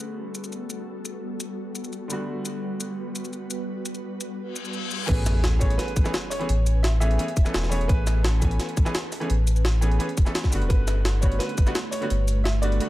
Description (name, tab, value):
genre	liquid drum and bass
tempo	171 BPM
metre	4/4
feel	straight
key	A major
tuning	A4 = 440 Hz
part	bright grand piano	accompaniment	0.0-12.9 s	D3 to G#5	-32 LUFS	equal	tape echo
part	ethereal airy pad	sustained chords	0.0-12.9 s	G3 to G#5	-34 LUFS	right 1 dB	ensemble chorus, built-in reverb, sidechain pumping
part	jungle sampler-style drum kit	drums	0.0-12.9 s	crash cymbal, hi-hat, shaker, snare drum	-31 LUFS	equal	none
part	reverse cymbal and sub drop	sound effects	4.5-6.5 s	none	-32 LUFS	left 1 dB	none
part	warm grand piano	melody	5.1-12.9 s	A4 to E5	-33 LUFS	equal	vintage 12-bit sampler grit, tape echo
part	warm sub bass	bass	5.1-12.8 s	D1 to A1	-22 LUFS	equal	none
part	electronic kick drum	drums	5.1-11.7 s	none	-21 LUFS	equal	overdrive
room	digital ambience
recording	none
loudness	-22 LUFS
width	side -16 dB against mid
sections	0.0-5.1 A section; 5.1-12.9 B section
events	filter sweep on grand piano 0.0-5.1; filter sweep on ambient pad 0.0-5.1; reverse cymbal 4.5-5.1; drop 5.1-12.9; impact 5.1-6.5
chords	0.0 Gmaj9; 5.1 Amaj9; 10.5 Gmaj9